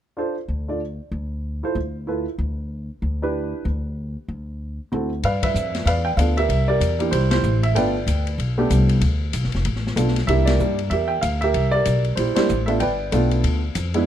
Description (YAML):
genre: jazz piano trio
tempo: 190 BPM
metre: 4/4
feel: swing 61% on 8ths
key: G mixolydian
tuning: A4 = 440 Hz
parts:
  - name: warm baby grand piano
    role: melody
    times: 0.2-14.1 s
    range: G3 to G5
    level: -22 LUFS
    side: right 2 dB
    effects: plate reverb
  - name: upright bass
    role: bass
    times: 0.5-14.1 s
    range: F1 to G2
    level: -22 LUFS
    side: left 1 dB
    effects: none
  - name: open jazz drum kit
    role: drums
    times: 5.2-14.0 s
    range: hi-hat, kick drum, ride cymbal, snare drum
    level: -29 LUFS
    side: left 4 dB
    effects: none
room: light reverb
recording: close, detailed microphones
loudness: -19 LUFS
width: side -10 dB against mid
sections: 0.2-5.2 A section; 5.2-14.1 B section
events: band accent 5.4, 7.3, 10.4, 12.3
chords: 0.2 Dm; 4.0 N.C.; 4.6 D9; 5.2 G7; 6.5 C7; 7.8 G; 10.3 C7; 12.8 G7